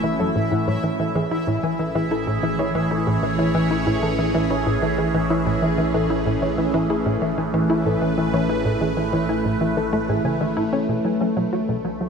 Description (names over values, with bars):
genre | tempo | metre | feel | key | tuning
ambient, sequencer-driven space music | 94 BPM | 4/4 | straight | unclear | A4 = 440 Hz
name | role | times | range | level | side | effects
evolving wavetable pad | sustained chords | 0.0-12.1 s | D3 to C#5 | -23 LUFS | equal | phaser, built-in reverb
soft round pluck | arpeggios | 0.0-10.8 s | E4 to G#5 | -28 LUFS | left 2 dB | chorus, auto-pan, analog delay
tight sequencer bass | riff | 0.0-12.1 s | A2 to F#4 | -24 LUFS | equal | wide subtle chorus, cassette tape, analog delay
analog drone | bass | 0.0-12.1 s | F#1 to B1 | -32 LUFS | equal | chorus
bubbling stepped-filter texture | texture | 0.0-10.9 s | E4 to E5 | -31 LUFS | right 1 dB | chorus, built-in reverb
room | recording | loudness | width
moderate plate reverb, RT60 3.4 s | dreamy mix soaked in reverb | -19 LUFS | side -6 dB against mid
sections
0.0-10.9 A section; 10.9-12.1 B section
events
none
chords
0.0 F#m7; 0.7 Amaj7; 10.9 Bm7